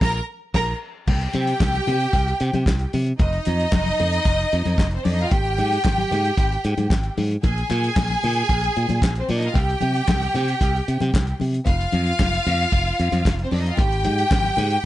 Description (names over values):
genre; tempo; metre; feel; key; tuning
disco; 113 BPM; 4/4; straight; C minor; A4 = 441 Hz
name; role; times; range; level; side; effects
clear symphonic string section; second line; 0.0-14.9 s; C4 to Bb5; -23 LUFS; equal; none
modern bright fingered electric bass; bass; 0.0-14.8 s; F1 to C3; -22 LUFS; equal; none
warm soul drum kit; drums; 0.0-14.8 s; crash cymbal, hi-hat, kick drum, snare drum; -22 LUFS; equal; none
congas; percussion; 1.1-14.7 s; none; -30 LUFS; left 5 dB; none
group handclap; percussion; 1.6-14.4 s; none; -37 LUFS; left 5 dB; none
room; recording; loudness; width
small room ambience; nothing above 10.7 kHz; -18 LUFS; side -14 dB against mid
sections
0.0-1.1 A section; 1.1-14.9 B section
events
band accent 0.0-1.1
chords
0.0 N.C.; 1.1 C5; 3.2 F5; 5.3 N.C.; 7.4 Bb7(no3); 9.6 C5; 11.7 F5; 13.8 N.C.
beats
0.01 0.54 | 1.07 1.60 2.13 2.67 | 3.19 3.73 4.26 4.79 | 5.32 5.84 6.38 6.91 | 7.43 7.96 8.49 9.02 | 9.55 10.08 10.61 11.14 | 11.67 12.20 12.73 13.26 | 13.78 14.31 14.84